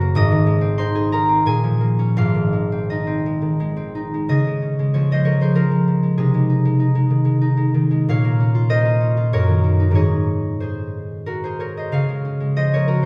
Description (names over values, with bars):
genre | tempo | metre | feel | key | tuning
classical, solo harp piece | 81-100 BPM | 3/4 | rubato | Db major | A4 = 440 Hz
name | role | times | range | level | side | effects
concert harp | solo | 0.0-13.1 s | Gb1 to Bb6 | -19 LUFS | equal | none
room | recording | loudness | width
wet recital hall reverb, RT60 1.5 s | heard from further back in the room | -19 LUFS | mono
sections
0.0-4.3 A section; 4.3-13.1 B section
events
none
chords
0.1 Ab; 1.5 Bbm7; 2.2 Ab; 4.3 Db; 6.2 Ab/C; 8.1 Bbm; 9.3 Ebm/Gb; 10.0 Ab; 11.9 Db